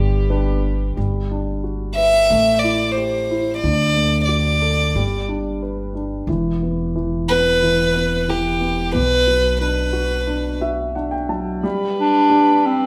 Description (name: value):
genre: acoustic folk-pop ballad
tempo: 90 BPM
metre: 4/4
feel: straight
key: G major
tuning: A4 = 443 Hz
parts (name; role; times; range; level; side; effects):
- mellow clarinet; melody; 0.0-0.3, 12.0-12.9 s; C4 to G4; -17 LUFS; equal; none
- warm upright piano; accompaniment; 0.0-12.9 s; B2 to A5; -25 LUFS; equal; none
- warm chamber string section; sustained chords; 0.0-1.0, 11.6-12.9 s; D3 to B5; -33 LUFS; equal; none
- upright bass; bass; 0.0-11.6 s; E1 to D2; -25 LUFS; equal; none
- rich violin; second line; 2.0-10.6 s; G4 to E5; -20 LUFS; equal; none
room: moderate large studio reverb, RT60 1.2 s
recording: band playing live in one room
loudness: -19 LUFS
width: mono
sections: 1.0-11.6 A section; 11.6-12.9 B section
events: violin solo 1.0-11.6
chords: 0.0 G; 1.0 Gmaj7; 2.3 Am7; 3.6 D; 5.0 G; 6.3 Em; 8.9 Bm; 11.6 G